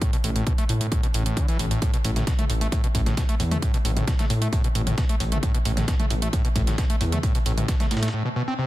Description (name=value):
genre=driving peak-time techno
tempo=133 BPM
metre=4/4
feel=straight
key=unclear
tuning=A4 = 440 Hz
part: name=screaming distorted acid line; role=riff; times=0.0-8.7 s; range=A2 to C4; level=-27 LUFS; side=equal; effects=distortion, chorus, sidechain pumping, tape echo
part: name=electronic kick drum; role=drums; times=0.0-7.8 s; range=none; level=-23 LUFS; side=equal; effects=none
part: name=techno drum kit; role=drums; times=0.0-8.1 s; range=hi-hat, toms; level=-31 LUFS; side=equal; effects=sidechain pumping on hats, sidechain pumping on toms
part: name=dark detuned saw bass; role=bass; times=0.2-8.1 s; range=A1 to A2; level=-25 LUFS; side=equal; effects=sidechain pumping
part: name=dusty soul sampler-style drum kit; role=drums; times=1.8-8.1 s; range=hi-hat, snare drum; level=-38 LUFS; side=equal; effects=high-pass filter on hats, high-pass filter on snare
room=digital ambience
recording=dense, heavily limited modern master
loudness=-21 LUFS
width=side -16 dB against mid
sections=0.0-8.7 A section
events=break 8.1-8.7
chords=0.0 A5